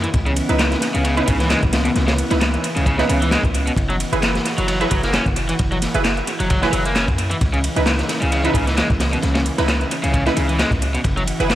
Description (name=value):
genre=breakbeat, breaks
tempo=132 BPM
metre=4/4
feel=swing 55% on 16ths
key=C# minor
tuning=A4 = 440 Hz
part: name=lush unison pad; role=sustained chords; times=0.0-11.6 s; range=C#3 to G#4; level=-26 LUFS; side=equal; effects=chorus, sidechain pumping
part: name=crunchy overdriven guitar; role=riff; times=0.0-11.2 s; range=B2 to C#4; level=-24 LUFS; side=equal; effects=analog delay
part: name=warm 808-style bass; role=bass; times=0.0-11.6 s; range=F#1 to F#2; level=-22 LUFS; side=equal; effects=none
part: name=house drum kit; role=drums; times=0.0-11.6 s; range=handclaps, hi-hat, ride cymbal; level=-27 LUFS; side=right 1 dB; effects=analog delay
part: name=crunchy breakbeat drum kit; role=drums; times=0.1-11.6 s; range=kick drum, ride cymbal, snare drum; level=-22 LUFS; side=equal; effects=analog delay
part: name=orchestra-hit-like synth stab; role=stabs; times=0.5-11.5 s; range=D#4 to B4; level=-24 LUFS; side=right 3 dB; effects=built-in reverb, cassette tape, analog delay
room=moderate spring reverb, RT60 1.7 s, small room ambience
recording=echo-heavy mix, vinyl crackle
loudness=-16 LUFS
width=side -13 dB against mid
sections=0.0-11.6 A section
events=none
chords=0.1 C#m7; 3.8 F#7sus4; 7.4 C#m7; 11.0 F#7sus4